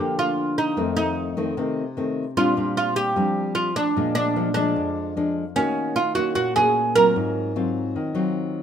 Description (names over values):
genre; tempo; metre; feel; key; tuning
bossa nova; 151 BPM; 4/4; straight; Bb major; A4 = 443 Hz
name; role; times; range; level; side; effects
oud; melody; 0.0-8.3 s; Db4 to Bb4; -22 LUFS; right 3 dB; none
nylon-string guitar; accompaniment; 0.0-8.6 s; F2 to Gb4; -24 LUFS; left 2 dB; none
room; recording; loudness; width
light reverb; minimal, uncompressed stereo recording; -20 LUFS; side -8 dB against mid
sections
0.0-8.6 A section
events
none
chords
0.0 Gm7; 0.8 F7; 2.4 Bb69; 4.0 Bb7; 5.6 Ebm7; 7.2 Ab13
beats
0.38 | 0.78 1.17 1.57 1.97 | 2.37 2.77 3.17 3.56 | 3.96 4.36 4.76 5.16 | 5.56 5.96 6.35 6.75 | 7.15 7.55 7.95 8.35